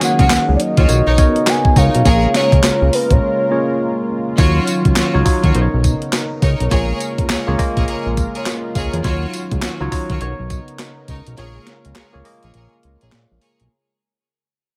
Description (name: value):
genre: R&B, new jack swing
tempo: 103 BPM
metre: 4/4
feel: swing 61% on 16ths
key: unclear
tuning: A4 = 437 Hz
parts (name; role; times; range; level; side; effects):
- soft octave-layered synth lead; melody; 0.0-4.1 s; Cb5 to Ab5; -20 LUFS; equal; chorus, tremolo
- tine electric piano; accompaniment; 0.0-13.7 s; F3 to F5; -24 LUFS; equal; none
- sweeping resonant pad; sustained chords; 0.0-13.7 s; C#3 to A#4; -27 LUFS; equal; chorus
- clean 12-bit digital drum machine; drums; 0.0-13.7 s; handclaps, hi-hat, kick drum, snare drum, tambourine; -19 LUFS; equal; none
- clear symphonic string section; stabs; 0.2-13.6 s; D#4 to Db5; -27 LUFS; equal; none
- fat analog bass; bass; 0.2-13.7 s; Bb1 to Bb2; -20 LUFS; equal; none
room: little or no reverb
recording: none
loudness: -16 LUFS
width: mono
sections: 0.0-4.4 A section; 4.4-13.7 B section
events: break 3.2-4.4, 11.4-13.7; fade-out 4.4-13.7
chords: 0.0 Ebm9; 0.9 Bmaj9; 2.1 Bbm7; 4.4 Ebm9; 5.5 Bmaj9; 6.7 Bbm7; 9.0 Ebm9; 10.2 Bmaj9; 11.4 Bbm7